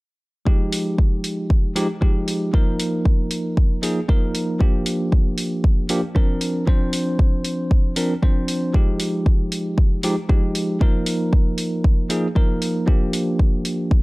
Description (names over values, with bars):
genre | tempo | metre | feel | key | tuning
nu-disco, nu disco | 116 BPM | 4/4 | swing 53% on 16ths | F dorian | A4 = 440 Hz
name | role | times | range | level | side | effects
bell-like tine electric piano | accompaniment | 0.5-14.0 s | F3 to C5 | -23 LUFS | equal | fast stereo tremolo, sidechain pumping, analog delay
electronic kick drum | drums | 0.5-14.0 s | none | -17 LUFS | equal | none
electronic hi-hat | drums | 0.7-13.8 s | none | -27 LUFS | left 1 dB | none
room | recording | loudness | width
digital ambience | dry, gritty hardware recording, cassette tape | -18 LUFS | side -24 dB against mid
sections
0.5-14.0 A section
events
none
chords
0.5 Fm9; 2.5 Bbsus4/F; 4.6 Gm7; 6.4 C9sus4; 8.7 Fm9; 10.8 Bbsus4/F; 12.9 Gm7